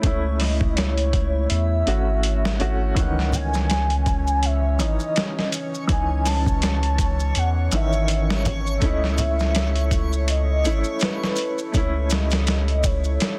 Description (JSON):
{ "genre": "trip hop", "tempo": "82 BPM", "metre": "4/4", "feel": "swing 57% on 16ths", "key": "unclear", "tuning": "A4 = 440 Hz", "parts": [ { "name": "pure breathy sine lead", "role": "melody", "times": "0.0-13.4 s", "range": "B4 to A5", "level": "-30 LUFS", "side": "equal", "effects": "phaser, analog chorus, tape echo" }, { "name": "warm upright piano", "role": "accompaniment", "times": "0.0-13.4 s", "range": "D#3 to F#4", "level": "-32 LUFS", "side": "equal", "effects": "tremolo, tape echo" }, { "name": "dark analog pad", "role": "sustained chords", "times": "0.0-13.4 s", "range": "A3 to C#5", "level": "-34 LUFS", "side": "equal", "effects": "chorus" }, { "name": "soft dub sub bass", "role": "bass", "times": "0.0-13.2 s", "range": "G#1 to E2", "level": "-24 LUFS", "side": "equal", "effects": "none" }, { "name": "dusty soul sampler-style drum kit", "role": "drums", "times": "0.0-13.4 s", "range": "hi-hat, kick drum, snare drum", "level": "-26 LUFS", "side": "equal", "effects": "overdrive, vintage 12-bit sampler grit" }, { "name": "maracas and congas", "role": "percussion", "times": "3.0-13.4 s", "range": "none", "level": "-33 LUFS", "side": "equal", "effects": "none" }, { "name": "backwards swelling texture", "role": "texture", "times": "3.0-13.4 s", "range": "C#5", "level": "-40 LUFS", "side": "equal", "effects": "built-in reverb" } ], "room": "little or no reverb", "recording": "dense, heavily limited modern master", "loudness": "-22 LUFS", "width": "mono", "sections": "0.0-13.4 A section", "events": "none", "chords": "0.0 A; 3.0 C#madd9; 8.8 A", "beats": "| 0.04 0.77 1.50 2.23 | 2.96 3.69 4.43 5.16 | 5.89 6.62 7.35 8.09 | 8.82 9.55 10.28 11.01 | 11.74 12.48 13.21" }